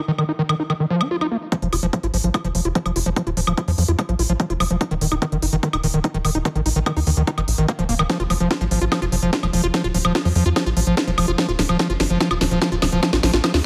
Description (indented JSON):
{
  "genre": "psychedelic trance",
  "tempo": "146 BPM",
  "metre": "4/4",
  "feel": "straight",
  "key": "unclear",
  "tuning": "A4 = 440 Hz",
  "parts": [
    { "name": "overdriven acid bass", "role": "riff", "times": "0.1-13.6 s", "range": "Eb3 to F4", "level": "-24 LUFS", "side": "equal", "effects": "distortion, sidechain pumping, digital delay" },
    { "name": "techno drum kit", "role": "drums", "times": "0.2-13.6 s", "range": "hi-hat, snare drum, woodblock", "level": "-26 LUFS", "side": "equal", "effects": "overdrive, small room ambience" },
    { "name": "electronic kick drum", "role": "drums", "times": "1.5-13.5 s", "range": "none", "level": "-24 LUFS", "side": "equal", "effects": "overdrive, high-pass filter on kick, small room ambience" },
    { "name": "tight sequencer bass", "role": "bass", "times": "1.6-13.6 s", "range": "Eb1 to F2", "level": "-24 LUFS", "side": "equal", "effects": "none" }
  ],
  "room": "moderate lush hall reverb, RT60 1.8 s, digital ambience",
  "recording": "none",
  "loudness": "-20 LUFS",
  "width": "mono",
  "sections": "0.0-1.5 A section; 1.5-13.7 B section",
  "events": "build-up 1.5-13.7; filter sweep on acid bass 1.5-13.7; drum fill 8.1-13.7",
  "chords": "0.0 Eb5; 1.5 N.C.; 4.8 Eb5; 8.1 N.C.; 11.4 Eb5",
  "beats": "0.29 0.70 1.11 | 1.52 1.93 2.34 2.75 | 3.16 3.58 3.99 4.40 | 4.81 5.22 5.63 6.04 | 6.45 6.86 7.27 7.68 | 8.10 8.51 8.92 9.33 | 9.74 10.15 10.56 10.97 | 11.38 11.79 12.21 12.62 | 13.03 13.44"
}